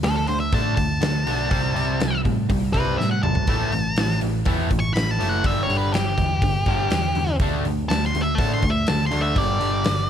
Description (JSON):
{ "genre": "classic rock", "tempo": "122 BPM", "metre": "4/4", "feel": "straight", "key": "unclear", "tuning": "A4 = 439 Hz", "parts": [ { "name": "octave-fuzz lead guitar", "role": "melody", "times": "0.0-10.1 s", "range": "G4 to C#6", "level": "-25 LUFS", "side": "left 1 dB", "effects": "distortion" }, { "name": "overdriven semi-hollow guitar", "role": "riff", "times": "0.0-10.1 s", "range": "G2 to D4", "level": "-25 LUFS", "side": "equal", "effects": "none" }, { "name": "hollow-body short-scale picked electric bass", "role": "bass", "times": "0.0-10.1 s", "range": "F#1 to A2", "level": "-25 LUFS", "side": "equal", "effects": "none" }, { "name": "big rock drum kit", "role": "drums", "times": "0.0-10.0 s", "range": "hi-hat, kick drum, snare drum, toms", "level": "-24 LUFS", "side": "equal", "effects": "none" } ], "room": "light reverb", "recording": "none", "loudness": "-19 LUFS", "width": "side -9 dB against mid", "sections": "0.0-10.1 A section", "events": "lead electric guitar solo 0.0-10.1; drum fill 3.0-3.5", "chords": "0.0 D5; 1.5 C5; 3.5 A5; 5.4 G5; 7.4 D5; 9.4 G5", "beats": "0.05 0.54 1.03 | 1.52 2.01 2.50 2.99 | 3.48 3.98 4.47 4.96 | 5.45 5.94 6.43 6.92 | 7.41 7.90 8.39 8.88 | 9.37 9.86" }